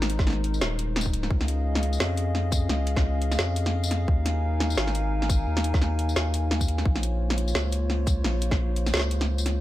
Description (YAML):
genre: half-time drum and bass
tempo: 173 BPM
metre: 4/4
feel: swing 57% on 16ths, half-time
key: Bb minor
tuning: A4 = 439 Hz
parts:
  - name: dark analog pad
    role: sustained chords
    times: 0.0-9.6 s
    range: Ab3 to Ab5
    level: -32 LUFS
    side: left 2 dB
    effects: chorus, vintage 12-bit sampler grit, sidechain pumping
  - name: saturated sub bass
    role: bass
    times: 0.0-9.6 s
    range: Eb1 to F2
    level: -26 LUFS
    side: equal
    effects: none
  - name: drum and bass drum kit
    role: drums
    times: 0.0-9.5 s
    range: hi-hat, snare drum, tambourine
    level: -29 LUFS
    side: equal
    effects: none
  - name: electronic kick drum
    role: drums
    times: 0.2-8.6 s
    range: none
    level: -24 LUFS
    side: equal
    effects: none
room: light reverb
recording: none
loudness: -23 LUFS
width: side -15 dB against mid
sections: 0.0-9.6 A section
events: none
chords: 0.0 Abadd9; 1.3 Db; 4.1 Ebsus4; 6.9 Bbm